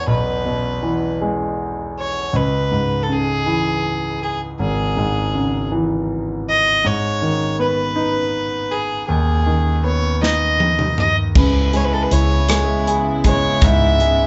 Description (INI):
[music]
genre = six-eight pop ballad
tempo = 53 BPM (dotted quarters)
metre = 6/8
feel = straight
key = C# minor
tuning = A4 = 440 Hz
[part]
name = warm fiddle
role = melody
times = 0.0-14.3 s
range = G#4 to E5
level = -23 LUFS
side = equal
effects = none
[part]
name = clear concert grand piano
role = accompaniment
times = 0.0-14.3 s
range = G#1 to G#4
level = -22 LUFS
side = equal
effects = none
[part]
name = modern studio drum kit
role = drums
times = 10.2-14.2 s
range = crash cymbal, hi-hat, kick drum, rim click, snare drum, toms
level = -21 LUFS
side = equal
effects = none
[part]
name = warm chamber string section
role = sustained chords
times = 11.3-14.3 s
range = C#3 to E4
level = -26 LUFS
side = equal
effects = none
[part]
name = vintage muted fingered electric bass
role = bass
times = 11.4-14.3 s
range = C#2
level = -21 LUFS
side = equal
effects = none
[sound]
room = wet large studio reverb, RT60 0.9 s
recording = band playing live in one room, nothing above 7.9 kHz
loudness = -18 LUFS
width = mono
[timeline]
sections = 0.0-11.4 A section; 11.4-14.3 B section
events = drum fill 10.2-11.4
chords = 0.0 E; 2.3 C#m; 6.8 G#m; 11.4 C#m7